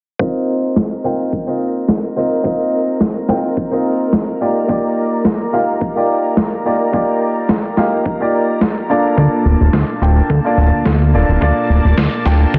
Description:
nu-disco, nu disco; 107 BPM; 4/4; swing 54% on 16ths; A4 = 440 Hz
clear grand piano; accompaniment; 0.2-12.6 s; Bb3 to G5; -19 LUFS; equal; sidechain pumping
string machine, full ensemble; sustained chords; 0.2-12.6 s; Bb3 to Bb5; -27 LUFS; equal; ensemble chorus, sidechain pumping
electronic kick drum; drums; 0.2-12.6 s; -26 LUFS; equal; overdrive, high-pass filter on kick, studio reverb
electronic snare drum; drums; 0.8-12.4 s; -20 LUFS; equal; overdrive, studio reverb
fat analog bass; bass; 9.2-12.6 s; D1 to D2; -14 LUFS; equal
light reverb; dense, heavily limited modern master, low-pass filter; -16 LUFS; mono
0.2-12.6 A section
filter sweep 0.2-12.6
0.2 F7sus4; 4.4 Ebmaj9; 8.9 Bbmaj7/D
| 0.21 0.77 1.33 1.89 | 2.45 3.01 3.57 4.13 | 4.69 5.25 5.81 6.37 | 6.93 7.50 8.06 8.62 | 9.18 9.74 10.30 10.86 | 11.42 11.98 12.54

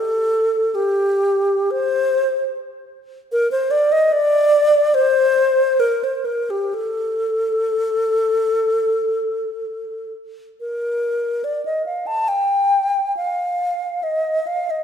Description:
classical, free, expressive piece for unaccompanied alto flute; 57-77 BPM; 4/4; rubato; A4 = 443 Hz
alto flute; solo; 0.0-14.8 s; G4 to A5; -17 LUFS; equal
wet concert hall reverb, RT60 2.2 s; minimal, uncompressed stereo recording; -17 LUFS; side -8 dB against mid
0.0-14.8 A section
0.76 1.71 2.55 | 3.33 4.13 4.96 5.81 | 6.75 7.72 8.68 9.63 | 10.60 11.44 12.30 13.17 | 14.04

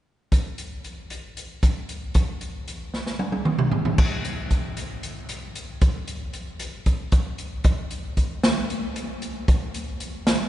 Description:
progressive instrumental, progressive; 229 BPM (eighths); 7/8; straight
open jazz drum kit; drums; 0.3-10.4 s; crash cymbal, hi-hat, kick drum, snare drum, toms; -23 LUFS; equal
wet cathedral reverb, RT60 5.5 s; recorded in a church or concert hall, nothing above 10.5 kHz; -22 LUFS; side -13 dB against mid
0.3-4.0 A section; 4.0-10.5 B section
drum fill 2.9-4.0
| 0.32 0.58 0.84 1.10 1.37 1.63 1.89 | 2.15 2.42 2.68 2.94 3.20 3.46 3.73 | 3.99 4.25 4.51 4.77 5.04 5.30 5.56 | 5.82 6.08 6.34 6.61 6.87 7.13 7.39 | 7.65 7.92 8.18 8.44 8.70 8.96 9.23 | 9.49 9.75 10.01 10.27

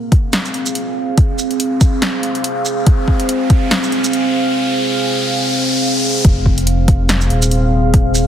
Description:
deep dubstep; 142 BPM; 4/4; swing 57% on 16ths, half-time; F minor; A4 = 440 Hz
deep dark ambient pad; sustained chords; 0.0-8.3 s; C4 to F5; -18 LUFS; right 1 dB; chorus, built-in reverb
riser; sound effects; 1.8-6.2 s; -22 LUFS; left 1 dB
deep house drum kit; drums; 0.1-8.2 s; hi-hat, shaker, snare drum; -19 LUFS; equal
electronic kick drum; drums; 0.1-3.6, 6.2-8.0 s; -12 LUFS; equal; overdrive
saturated sub bass; bass; 6.2-8.3 s; Eb1 to F1; -15 LUFS; equal
light reverb; heavily compressed radio sound, multiband compression; -13 LUFS; side -10 dB against mid
0.0-6.2 A section; 6.2-8.3 B section
build-up 0.0-6.2; riser 1.8-6.2; drop 6.2-8.3
0.0 Fm
0.33 0.75 | 1.18 1.60 2.02 2.44 | 2.87 3.29 3.71 4.13 | 4.56 4.98 5.40 5.82 | 6.25 6.67 7.09 7.51 | 7.94

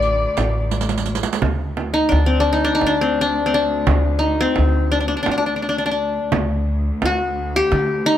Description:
Turkish makam ensemble; 172 BPM (eighths); 7/8; straight; D makam hicaz; A4 = 436 Hz
qanun; melody; 0.0-8.2 s; C4 to D5; -18 LUFS; left 2 dB
dark kamancheh; second line; 0.0-1.1 s; D5; -22 LUFS; left 3 dB
upright bass; bass; 0.0-8.0 s; A1 to D3; -21 LUFS; equal
muted symphonic cello section; drone; 0.0-8.2 s; D2; -29 LUFS; equal
riq; percussion; 0.0-1.4 s; -23 LUFS; right 7 dB
frame drum; percussion; 0.4-7.9 s; -23 LUFS; right 5 dB
light reverb; -16 LUFS; side -11 dB against mid
0.0-1.4 A section; 1.4-8.2 B section
drum fill 0.7-1.4
0.03 0.38 0.73 1.08 | 1.43 1.78 2.13 2.48 2.83 3.17 3.52 | 3.87 4.22 4.57 4.92 5.27 5.62 5.97 | 6.32 6.67 7.02 7.37 7.71 8.06

